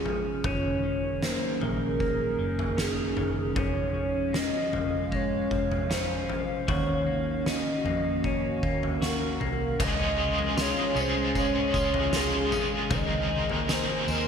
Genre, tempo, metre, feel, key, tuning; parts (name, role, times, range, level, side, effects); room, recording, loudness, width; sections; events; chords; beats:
dream pop; 77 BPM; 4/4; straight; Db major; A4 = 439 Hz
warbly nostalgic lead; melody; 0.0-14.3 s; Ab4 to Eb5; -31 LUFS; right 1 dB; chorus, ping-pong delay
warbly tape-like pad; sustained chords; 0.0-14.3 s; Eb3 to C6; -32 LUFS; left 1 dB; chorus, built-in reverb, phaser
clean electric guitar; arpeggios; 0.0-14.3 s; Eb3 to Ab4; -33 LUFS; left 2 dB; wide subtle chorus, ping-pong delay
oversized low-tuned drum kit; drums; 0.1-14.3 s; crash cymbal, kick drum, snare drum, tambourine, toms; -32 LUFS; equal; gated reverb
vintage muted fingered electric bass; bass; 0.4-14.3 s; F1 to F2; -33 LUFS; equal
overdriven electric guitar; accompaniment; 9.8-14.3 s; Db3 to Bb4; -30 LUFS; right 1 dB; tremolo, wide subtle chorus
moderate lush hall reverb, RT60 2.7 s; bright 1980s-style digital production; -25 LUFS; side -7 dB against mid
0.0-9.8 A section; 9.8-14.3 B section
0.4 Gb6; 3.6 Db/F; 6.7 Ebm7; 9.8 Db; 12.9 Abadd9/Db
| 0.44 1.22 2.00 2.78 | 3.56 4.34 5.12 5.90 | 6.68 7.46 8.23 9.02 | 9.79 10.57 11.35 12.13 | 12.91 13.69